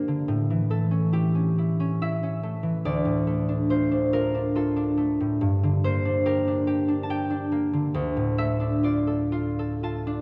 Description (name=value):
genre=classical, solo harp piece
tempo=70 BPM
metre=3/4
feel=uneven beats, rubato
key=D minor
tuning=A4 = 440 Hz
part: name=concert harp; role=solo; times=0.0-10.2 s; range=D2 to A5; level=-25 LUFS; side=equal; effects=none
room=wet church reverb, RT60 2.5 s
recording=dark, warm production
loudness=-25 LUFS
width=mono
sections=0.0-10.2 A section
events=none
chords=0.3 A7; 2.9 Dm; 5.4 Gm; 8.0 Dm